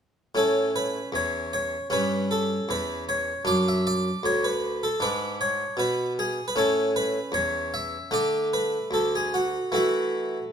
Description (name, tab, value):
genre	classical, baroque-style suite movement for harpsichord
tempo	77 BPM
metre	4/4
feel	rubato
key	A major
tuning	A4 = 439 Hz
part	harpsichord	solo	0.3-10.5 s	D2 to E5	-23 LUFS	equal	none
room	moderate stone room reverb, RT60 1.4 s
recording	close, detailed microphones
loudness	-23 LUFS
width	side -8 dB against mid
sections	0.3-10.5 A section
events	none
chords	0.3 A; 1.9 Em6; 3.5 D/F#; 5.0 G#dim; 6.5 A; 8.1 D5; 9.7 A5/E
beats	| 0.35 1.13 1.91 2.69 | 3.47 4.24 5.01 5.78 | 6.54 7.32 8.11 8.92 | 9.73